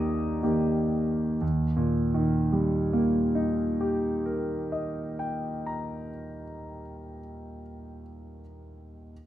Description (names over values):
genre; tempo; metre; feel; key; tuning
classical, romantic character piece for solo piano; 60-67 BPM; 3/4; rubato; Eb major; A4 = 440 Hz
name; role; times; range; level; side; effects
clear concert grand piano; solo; 0.0-9.1 s; Eb2 to Eb6; -26 LUFS; equal; none
room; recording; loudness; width
light reverb; close, detailed microphones; -25 LUFS; side -12 dB against mid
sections
0.0-1.4 A section; 1.4-7.0 B section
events
slowing down 0.0-1.4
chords
0.0 Eb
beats
0.44 | 1.41 2.34 3.27 | 4.23 5.15 6.04